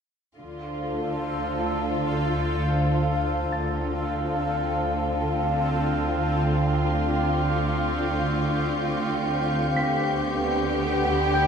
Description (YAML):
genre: cinematic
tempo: free time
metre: none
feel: none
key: D dorian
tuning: A4 = 439 Hz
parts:
  - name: warm studio violin section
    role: melody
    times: 0.4-11.5 s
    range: F4 to G4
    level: -29 LUFS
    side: left 2 dB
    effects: none
  - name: bubbling stepped-filter texture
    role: sustained chords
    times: 0.7-11.5 s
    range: B3 to G5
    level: -27 LUFS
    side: equal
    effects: chorus, built-in reverb
  - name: dark studio double bass section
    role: bass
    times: 0.4-11.5 s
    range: D2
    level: -32 LUFS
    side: right 2 dB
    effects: none
  - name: warm studio cello section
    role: bass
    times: 0.4-11.5 s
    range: D3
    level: -30 LUFS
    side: right 1 dB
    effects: none
  - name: deep rumbling drone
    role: drone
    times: 1.4-11.5 s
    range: D2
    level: -29 LUFS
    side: equal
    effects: built-in reverb
  - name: warm baby grand piano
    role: texture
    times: 1.7-11.5 s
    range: G5 to B6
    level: -34 LUFS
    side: left 2 dB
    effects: none
  - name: warm studio violin section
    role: texture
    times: 6.6-11.5 s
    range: C6 to G6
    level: -37 LUFS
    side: left 3 dB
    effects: none
room: wet recital hall reverb, RT60 1.5 s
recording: recorded in a church or concert hall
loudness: -22 LUFS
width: side -7 dB against mid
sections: 0.4-11.5 A section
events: none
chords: 0.4 Dm7; 6.6 Fsus2/D; 9.8 G/D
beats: free time